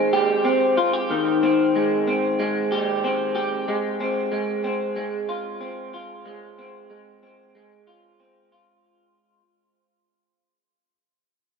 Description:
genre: dream pop.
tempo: 93 BPM.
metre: 4/4.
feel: straight.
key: Ab major.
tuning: A4 = 441 Hz.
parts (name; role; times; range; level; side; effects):
electric guitar through a small old amp; solo; 0.0-9.4 s; Eb3 to G4; -21 LUFS; equal; analog chorus, ping-pong delay.
room: wet huge ambient reverb, RT60 4.0 s.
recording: none.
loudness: -20 LUFS.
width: side -5 dB against mid.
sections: 0.0-8.8 A section.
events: fade-out 0.0-8.8.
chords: 0.0 Abmaj7; 3.7 Ab6.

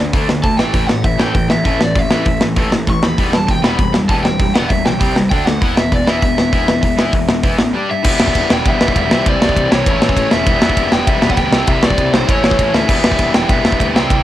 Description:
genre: punk rock.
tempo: 197 BPM.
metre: 4/4.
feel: straight.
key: E minor.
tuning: A4 = 439 Hz.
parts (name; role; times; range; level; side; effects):
distorted electric guitar; riff; 0.0-14.2 s; A2 to G4; -19 LUFS; left 5 dB; distortion, cassette tape.
tight distorted guitar; riff; 0.0-14.2 s; A2 to G4; -23 LUFS; right 9 dB; distortion, cassette tape.
fuzz picked electric bass; bass; 0.0-14.2 s; E1 to D#2; -22 LUFS; equal; overdrive.
big rock drum kit; drums; 0.1-14.2 s; crash cymbal, hi-hat, kick drum, ride cymbal, snare drum; -15 LUFS; equal; cassette tape.
raw garage guitar; melody; 0.4-14.2 s; C5 to C#6; -19 LUFS; equal; overdrive, cassette tape.
room: little or no reverb.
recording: home recording on cassette.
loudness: -12 LUFS.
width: side -13 dB against mid.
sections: 0.0-8.0 A section; 8.0-14.2 B section.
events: break 7.7-8.0.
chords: 0.0 D5; 0.6 A5; 3.2 Em; 5.0 C5; 5.3 D5; 5.6 E5; 7.7 G5; 8.0 Em; 9.1 C; 9.9 A; 10.5 Em; 11.5 C; 12.3 A; 12.9 Em.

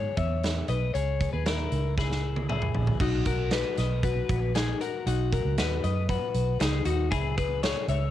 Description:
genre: jangly indie pop.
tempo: 117 BPM.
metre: 4/4.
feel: straight.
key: B major.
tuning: A4 = 440 Hz.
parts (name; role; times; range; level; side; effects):
twelve-string electric guitar; arpeggios; 0.0-8.1 s; D#4 to E5; -30 LUFS; left 8 dB; cassette tape.
vintage muted fingered electric bass; bass; 0.0-8.1 s; A#1 to F#2; -28 LUFS; right 2 dB; none.
big rock drum kit; drums; 0.2-8.0 s; crash cymbal, hi-hat, kick drum, snare drum, toms; -30 LUFS; right 2 dB; none.
room: light reverb.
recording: home recording on cassette.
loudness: -25 LUFS.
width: side -12 dB against mid.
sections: 0.0-3.0 A section; 3.0-8.1 B section.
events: drum fill 2.0-3.0.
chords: 0.0 C#m; 3.0 B; 7.1 C#m.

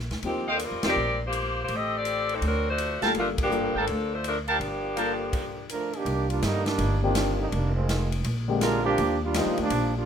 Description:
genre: jazz, big band swing.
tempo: 165 BPM.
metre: 4/4.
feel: swing 65% on 8ths.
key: G minor.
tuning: A4 = 440 Hz.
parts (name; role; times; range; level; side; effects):
upright bass; bass; 0.0-10.1 s; F1 to G2; -29 LUFS; equal; none.
swinging big-band drum kit; drums; 0.0-9.8 s; crash cymbal, hi-hat, kick drum, ride cymbal, snare drum; -34 LUFS; equal; none.
warm concert grand piano; accompaniment; 0.2-9.9 s; D3 to A4; -29 LUFS; left 5 dB; none.
clear saxophone section; melody; 0.3-5.7 s; F3 to Eb5; -27 LUFS; left 1 dB; none.
brilliant trumpet section; stabs; 0.5-5.1 s; Bb4 to A5; -27 LUFS; right 1 dB; none.
bright trombone section; second line; 5.7-10.1 s; D3 to Bb4; -27 LUFS; right 4 dB; none.
room: light reverb.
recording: minimal, uncompressed stereo recording.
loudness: -24 LUFS.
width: side -8 dB against mid.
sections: 0.0-6.1 A section; 6.1-10.1 B section.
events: band accent 0.8, 3.3; stop 5.3-6.1; trombone section solo 6.1-10.1.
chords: 0.2 Eb69; 1.7 Am7b5; 2.4 D7b13; 3.1 Gm9; 6.1 Cm9; 7.5 Fm7; 8.2 Bb13; 9.0 Ebmaj9.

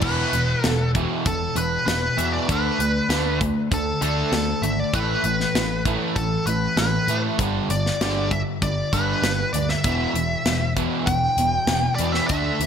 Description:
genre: hard rock.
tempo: 98 BPM.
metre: 4/4.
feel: straight.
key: E minor.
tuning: A4 = 441 Hz.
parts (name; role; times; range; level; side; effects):
nasal lead guitar with a parked wah; melody; 0.0-12.7 s; A4 to G5; -24 LUFS; equal; overdrive, ping-pong delay.
crunchy overdriven guitar; riff; 0.0-12.7 s; E2 to D4; -27 LUFS; right 11 dB; analog chorus.
sludgy distorted guitar; riff; 0.0-12.7 s; E2 to D4; -27 LUFS; left 10 dB; overdrive.
picked electric bass; bass; 0.0-12.7 s; E1 to A2; -27 LUFS; equal; none.
tight metal drum kit; drums; 0.0-12.7 s; crash cymbal, hi-hat, kick drum, snare drum; -26 LUFS; left 1 dB; gated reverb.
room: moderate plate reverb, RT60 2.2 s.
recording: bright 1980s-style digital production.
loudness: -20 LUFS.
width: side -8 dB against mid.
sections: 0.0-12.7 A section.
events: none.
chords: 0.0 E5; 2.5 D5; 4.9 A5; 7.4 G; 9.8 Em.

